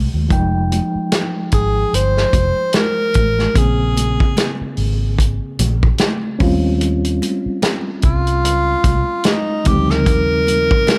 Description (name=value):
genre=lush 1970s-style soul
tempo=74 BPM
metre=4/4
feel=swing 58% on 16ths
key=Bb dorian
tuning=A4 = 439 Hz
part: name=mellow reed electric piano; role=accompaniment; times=0.0-11.0 s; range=Db3 to G5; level=-24 LUFS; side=equal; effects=fast tremolo
part: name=vintage muted fingered electric bass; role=bass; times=0.0-10.7 s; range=F1 to Eb2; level=-21 LUFS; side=equal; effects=none
part: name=congas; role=percussion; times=0.1-11.0 s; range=none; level=-29 LUFS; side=equal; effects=none
part: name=warm soul drum kit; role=drums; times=0.3-11.0 s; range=hi-hat, kick drum, snare drum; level=-20 LUFS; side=equal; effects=none
part: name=breathy tenor saxophone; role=melody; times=1.5-11.0 s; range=Eb4 to C5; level=-20 LUFS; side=equal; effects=none
room=studio reverb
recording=none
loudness=-17 LUFS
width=mono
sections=0.0-11.0 A section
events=none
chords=0.3 Fm9; 3.6 Bbm9; 6.4 Eb13